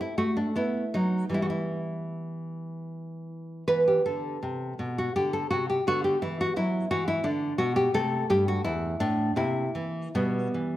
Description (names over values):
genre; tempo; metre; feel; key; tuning
classical, baroque-style dance for nylon-string guitar; 75-87 BPM; 3/4; rubato; E minor; A4 = 440 Hz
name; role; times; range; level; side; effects
nylon-string guitar; solo; 0.0-10.8 s; E2 to B4; -25 LUFS; equal; none
room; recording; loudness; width
moderate recital hall reverb, RT60 1.4 s; none; -25 LUFS; side -14 dB against mid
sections
0.0-3.7 A section; 3.7-10.8 B section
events
none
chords
0.0 A5; 0.6 B; 1.3 Em; 3.7 E5; 5.9 Bm/D; 8.0 Am; 9.4 C7; 10.2 Em/B